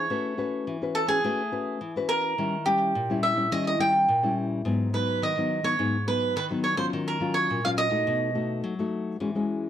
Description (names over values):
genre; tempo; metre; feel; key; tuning
samba; 106 BPM; 4/4; straight; unclear; A4 = 441 Hz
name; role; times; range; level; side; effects
cavaquinho; melody; 0.0-8.6 s; G4 to G5; -25 LUFS; right 2 dB; slapback echo
nylon-string guitar; accompaniment; 0.0-9.7 s; G#2 to B4; -28 LUFS; left 3 dB; none
room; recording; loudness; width
light reverb; dry, close 1970s-style studio recording; -24 LUFS; side -10 dB against mid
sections
0.0-9.2 A section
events
none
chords
0.1 A69; 2.4 D#7b9; 4.7 G#m7; 6.9 D#m9; 8.1 B7